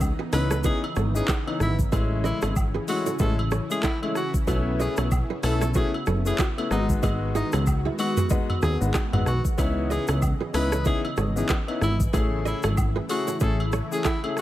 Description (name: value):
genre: afrobeats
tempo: 94 BPM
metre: 4/4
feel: swing 58% on 16ths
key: unclear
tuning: A4 = 439 Hz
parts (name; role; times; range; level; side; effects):
- warm analog pad; sustained chords; 0.0-14.4 s; C#3 to D#5; -33 LUFS; equal; chorus
- plucky analog bass; bass; 0.0-13.8 s; F#1 to D#2; -25 LUFS; equal; none
- afro-pop drum kit; drums; 0.0-14.4 s; handclaps, hi-hat, kick drum, rim click, shaker, toms; -26 LUFS; equal; overdrive
- woodblock and agogo bells; percussion; 0.0-14.4 s; none; -37 LUFS; right 1 dB; none
- kora; riff; 0.2-14.3 s; D#4 to D#5; -33 LUFS; right 6 dB; tape echo
- bright alto saxophone; melody; 0.3-14.4 s; D#4 to B4; -32 LUFS; equal; tape echo
- warm grand piano; accompaniment; 0.3-14.4 s; E3 to G#4; -30 LUFS; left 4 dB; none
room: studio reverb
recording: none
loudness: -22 LUFS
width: side -14 dB against mid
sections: 0.0-14.4 A section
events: none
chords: 0.0 C#m9; 4.5 B9sus4; 6.7 G#m7; 9.6 C#m9